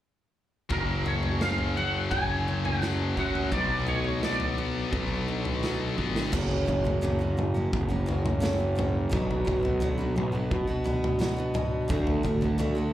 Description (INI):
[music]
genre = quiet-loud alternative rock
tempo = 86 BPM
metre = 4/4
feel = straight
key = F# major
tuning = A4 = 445 Hz
[part]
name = twangy electric guitar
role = melody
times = 0.7-5.6 s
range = A#4 to G#5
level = -31 LUFS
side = right 1 dB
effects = analog chorus, slapback echo, digital delay
[part]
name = picked steel-string acoustic guitar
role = arpeggios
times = 0.7-12.9 s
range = F#2 to F#4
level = -32 LUFS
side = right 2 dB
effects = slapback echo, digital delay
[part]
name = scooped high-gain guitar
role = riff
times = 0.7-6.3 s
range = F#2 to B3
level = -32 LUFS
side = left 7 dB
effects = distortion, slapback echo
[part]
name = fuzz picked electric bass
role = bass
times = 0.7-12.9 s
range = F#1 to B2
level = -29 LUFS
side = equal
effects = overdrive
[part]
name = big rock drum kit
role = drums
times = 0.7-12.8 s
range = crash cymbal, kick drum, snare drum, toms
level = -30 LUFS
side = equal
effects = none
[sound]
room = little or no reverb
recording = live gig heard through the venue's PA, club reverb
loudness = -25 LUFS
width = side -13 dB against mid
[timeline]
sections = 0.7-6.3 A section; 6.3-12.9 B section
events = drum fill 6.0-6.3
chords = 0.7 F#; 3.5 Bm; 6.3 F#; 9.1 Bm; 11.9 D